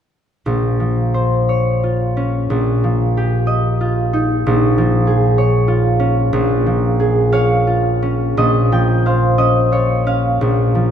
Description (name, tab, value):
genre	classical, solo harp piece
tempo	54-66 BPM (dotted quarters)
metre	6/8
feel	rubato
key	Bb dorian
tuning	A4 = 441 Hz
part	concert harp	solo	0.5-10.9 s	Bb1 to G5	-13 LUFS	equal	none
room	wet church reverb, RT60 3.1 s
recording	minimal, uncompressed stereo recording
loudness	-13 LUFS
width	side -8 dB against mid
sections	0.5-8.4 A section; 8.4-10.9 B section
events	none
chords	0.5 Bbmadd9; 2.5 Ebadd9/Bb; 4.5 Bbm7; 8.4 Bbmadd9